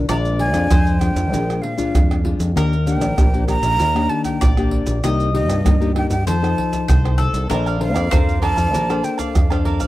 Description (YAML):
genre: samba and choro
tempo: 97 BPM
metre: 4/4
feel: straight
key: unclear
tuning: A4 = 435 Hz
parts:
  - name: bowl-back mandolin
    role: second line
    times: 0.0-9.9 s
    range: A4 to Eb5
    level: -28 LUFS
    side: left 2 dB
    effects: none
  - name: nylon-string guitar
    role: accompaniment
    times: 0.0-9.9 s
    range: Bb2 to C5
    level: -22 LUFS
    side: left 4 dB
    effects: none
  - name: fingered electric bass with an envelope filter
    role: bass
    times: 0.0-9.9 s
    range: A1 to G2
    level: -20 LUFS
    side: equal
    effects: none
  - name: breathy jazz flute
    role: melody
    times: 0.1-9.7 s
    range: Eb5 to Bb5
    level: -24 LUFS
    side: right 2 dB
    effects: none
  - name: maracas, surdo, pandeiro and tamborim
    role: percussion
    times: 0.1-9.9 s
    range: none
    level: -19 LUFS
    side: right 1 dB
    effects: none
  - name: cavaquinho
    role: accompaniment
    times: 7.5-9.9 s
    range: Bb4 to A5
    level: -28 LUFS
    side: right 6 dB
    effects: none
room: small room ambience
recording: dry, close 1970s-style studio recording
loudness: -15 LUFS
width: side -16 dB against mid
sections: 0.0-9.9 A section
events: none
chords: 0.1 Bb7; 2.6 Ebmaj7; 5.0 Cm7; 6.3 F7; 7.5 Bbmaj9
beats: | 0.09 0.71 1.33 1.95 | 2.56 3.18 3.80 4.42 | 5.03 5.65 6.27 6.89 | 7.50 8.12 8.74 9.36